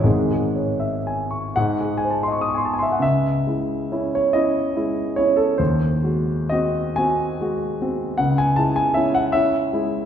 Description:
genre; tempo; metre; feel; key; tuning
classical, romantic nocturne for solo piano; 39-53 BPM (dotted quarters); 6/8; rubato; C# minor; A4 = 440 Hz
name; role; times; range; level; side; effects
warm concert grand piano; solo; 0.0-10.1 s; G#1 to D#6; -18 LUFS; equal; none
room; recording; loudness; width
wet scoring stage reverb, RT60 1.7 s; recorded in a church or concert hall; -18 LUFS; side -9 dB against mid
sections
0.0-3.0 A section; 3.0-10.1 B section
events
none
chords
0.0 C#m/G#; 1.6 G#; 3.0 C#m; 5.6 G#7/D#; 8.2 C#m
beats
| 0.05 1.55 | 3.02 4.34 | 5.59 6.98 | 8.19 9.34

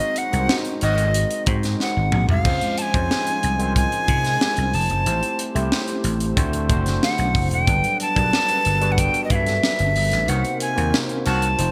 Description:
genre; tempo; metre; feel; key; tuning
polished 1980s jazz-funk pop; 92 BPM; 4/4; straight; unclear; A4 = 440 Hz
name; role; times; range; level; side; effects
breathy alto recorder; melody; 0.0-11.7 s; Eb5 to A5; -25 LUFS; equal; none
overdriven tine electric piano; accompaniment; 0.0-11.7 s; F#3 to C5; -29 LUFS; equal; analog chorus
hollow soft pad; sustained chords; 0.0-11.7 s; C3 to C5; -35 LUFS; equal; none
tight funk drum kit; drums; 0.2-11.7 s; crash cymbal, hi-hat, kick drum, snare drum, toms; -26 LUFS; equal; gated reverb
vintage slap bass; bass; 0.3-11.7 s; E1 to C3; -25 LUFS; equal; none
clear horn section; second line; 0.8-1.1, 10.3-11.5 s; Eb3 to Gb4; -34 LUFS; equal; none
room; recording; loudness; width
light reverb, studio reverb; bright 1980s-style digital production; -20 LUFS; mono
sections
0.0-11.7 A section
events
band accent 0.0-2.5, 10.3-11.7; drum fill 1.8-2.5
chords
0.0 Ab7; 2.5 Dbmaj7; 5.1 Am7; 6.4 D7; 7.7 Gmaj7; 10.3 Cm7b5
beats
0.49 1.14 1.80 | 2.45 3.10 3.76 4.41 | 5.06 5.72 6.37 7.02 | 7.67 8.33 8.98 9.63 | 10.28 10.94 11.59

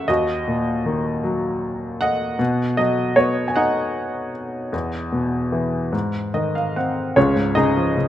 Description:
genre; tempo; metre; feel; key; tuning
classical, lyrical solo piano; 51 BPM (dotted quarters); 6/8; uneven beats, rubato; unclear; A4 = 438 Hz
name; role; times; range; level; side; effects
bright baby grand piano; solo; 0.0-8.1 s; Db2 to G#5; -19 LUFS; equal; none
room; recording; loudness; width
light reverb; close, detailed microphones; -19 LUFS; side -12 dB against mid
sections
0.0-7.2 A section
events
grand piano fill 5.9-7.2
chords
0.1 D#m; 2.4 B; 4.7 E5; 5.9 G#; 7.2 Db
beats
| 0.09 1.24 | 2.40 3.56 | 4.73 5.93 | 7.16

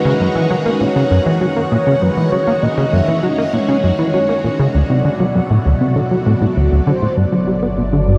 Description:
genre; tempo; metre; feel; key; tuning
ambient, sequencer-driven space music; 99 BPM; 4/4; straight; unclear; A4 = 439 Hz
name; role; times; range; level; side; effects
mellow horn-like synth lead; melody; 0.0-8.2 s; A#4 to E5; -22 LUFS; equal; subtle chorus, tape echo
phased string machine; sustained chords; 0.0-8.2 s; B2 to A#5; -23 LUFS; equal; ensemble chorus, phaser
bubbling stepped-filter texture; texture; 0.0-7.2 s; F#4 to F#5; -29 LUFS; equal; chorus, built-in reverb
plucky analog bass; riff; 0.1-8.2 s; D2 to B3; -17 LUFS; equal; tape echo
analog drone; bass; 7.5-8.2 s; G1; -23 LUFS; equal; chorus
room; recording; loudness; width
wet huge ambient reverb, RT60 7.7 s; in a vast, echoing space; -15 LUFS; mono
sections
0.0-7.2 A section; 7.2-8.2 B section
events
none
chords
0.0 F#; 4.7 D7; 7.2 G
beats
0.50 1.11 1.72 | 2.32 2.93 3.53 4.14 | 4.75 5.35 5.96 6.56 | 7.17 7.78

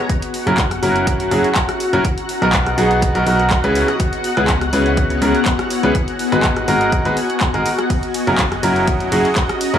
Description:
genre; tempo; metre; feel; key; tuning
piano house; 123 BPM; 4/4; straight; unclear; A4 = 441 Hz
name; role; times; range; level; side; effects
analog string pad; sustained chords; 0.0-9.8 s; F#4 to A#5; -24 LUFS; equal; ensemble chorus, sidechain pumping
granular cloud pad; texture; 0.0-9.8 s; B3 to A#5; -23 LUFS; left 3 dB; built-in reverb, sidechain pumping
electronic kick drum; drums; 0.1-9.5 s; none; -21 LUFS; equal; none
punchy analog drum machine; drums; 0.1-9.8 s; handclaps, hi-hat, ride cymbal, rim click; -23 LUFS; equal; none
bright grand piano; riff; 0.5-9.8 s; B2 to B4; -18 LUFS; equal; sidechain pumping, analog delay
solid FM bass; bass; 0.5-9.8 s; F#1 to C#2; -21 LUFS; equal; sidechain pumping
room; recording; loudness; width
light reverb; dry, gritty hardware recording, small room ambience; -14 LUFS; side -9 dB against mid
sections
0.0-9.8 A section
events
none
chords
0.1 F#7; 2.0 Bmaj7; 3.8 C#m7; 5.9 G#m7; 7.9 F#7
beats
| 0.10 0.58 1.07 1.56 | 2.05 2.53 3.02 3.51 | 4.00 4.49 4.97 5.46 | 5.95 6.44 6.92 7.41 | 7.90 8.39 8.88 9.36

